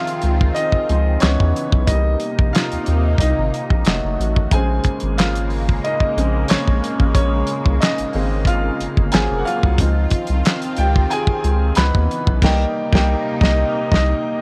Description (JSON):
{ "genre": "R&B, neo-soul", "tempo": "91 BPM", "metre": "4/4", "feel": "straight", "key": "unclear", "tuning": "A4 = 441 Hz", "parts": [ { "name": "bright grand piano", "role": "accompaniment", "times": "0.0-14.4 s", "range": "Db3 to Cb6", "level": "-24 LUFS", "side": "equal", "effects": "none" }, { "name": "lush unison pad", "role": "sustained chords", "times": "0.0-14.4 s", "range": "C3 to Gb4", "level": "-29 LUFS", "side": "equal", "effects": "chorus, phaser" }, { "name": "damped 70s drum kit", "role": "drums", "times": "0.1-14.1 s", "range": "crash cymbal, handclaps, hi-hat, kick drum, snare drum", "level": "-20 LUFS", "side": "equal", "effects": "none" }, { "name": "round analog bass", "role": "bass", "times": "0.2-14.1 s", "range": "F1 to Fb2", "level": "-21 LUFS", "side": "equal", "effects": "none" } ], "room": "small room ambience", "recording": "none", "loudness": "-18 LUFS", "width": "mono", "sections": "0.0-14.4 A section", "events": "grand piano solo 0.0-14.4; band accent 12.4-14.4", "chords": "0.0 Dbmaj9; 1.2 Dbm7; 1.9 Cm7; 3.9 F7b9; 4.5 Bbm9; 9.1 Ab13; 9.8 Dbmaj9; 11.8 Dbm7; 12.4 Cm7" }